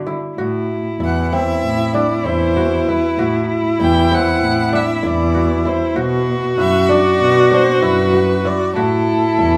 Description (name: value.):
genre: contemporary instrumental, chamber music in an uneven meter.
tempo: 193 BPM (eighths).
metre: 9/8.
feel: straight.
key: A dorian.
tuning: A4 = 443 Hz.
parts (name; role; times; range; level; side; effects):
kora; arpeggios; 0.0-9.6 s; B3 to F#4; -24 LUFS; equal; none.
muted cello; bass; 0.0-9.6 s; E2 to D3; -22 LUFS; equal; none.
warm cello; second line; 0.4-9.6 s; E4 to F#4; -20 LUFS; equal; none.
warm violin; melody; 1.0-9.6 s; A4 to G5; -23 LUFS; equal; none.
room: wet studio reverb, RT60 0.6 s.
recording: heard from further back in the room.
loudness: -16 LUFS.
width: mono.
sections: 0.0-9.6 A section.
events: none.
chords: 0.4 Am; 6.0 Bm; 8.8 A5.